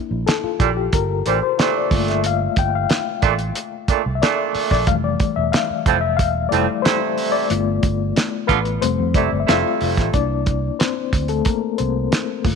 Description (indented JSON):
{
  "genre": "lush 1970s-style soul",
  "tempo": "91 BPM",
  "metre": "4/4",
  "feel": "straight",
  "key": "unclear",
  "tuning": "A4 = 436 Hz",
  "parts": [
    { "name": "reed electric piano", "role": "accompaniment", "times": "0.0-12.6 s", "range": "E3 to G5", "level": "-21 LUFS", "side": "left 12 dB", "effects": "fast tremolo" },
    { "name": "fingered electric bass", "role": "bass", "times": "0.1-12.6 s", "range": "E1 to F2", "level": "-23 LUFS", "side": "right 2 dB", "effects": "none" },
    { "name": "cloth-damped thuddy drum kit", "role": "drums", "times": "0.3-12.6 s", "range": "hi-hat, kick drum, snare drum", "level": "-20 LUFS", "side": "right 2 dB", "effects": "none" },
    { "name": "clear horn section", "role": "stabs", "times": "0.6-10.1 s", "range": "A2 to F4", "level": "-21 LUFS", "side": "right 16 dB", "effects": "none" }
  ],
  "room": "light reverb, small room ambience",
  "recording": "1960s-style stereo with parts hard left and right",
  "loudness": "-17 LUFS",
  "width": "side -6 dB against mid",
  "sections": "0.0-10.1 A section; 10.1-12.6 B section",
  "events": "reed electric piano solo 0.0-10.1, 10.1-12.6",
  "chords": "0.0 C9; 4.9 Fmaj7; 7.5 G7; 8.8 Fmaj7; 10.1 C9"
}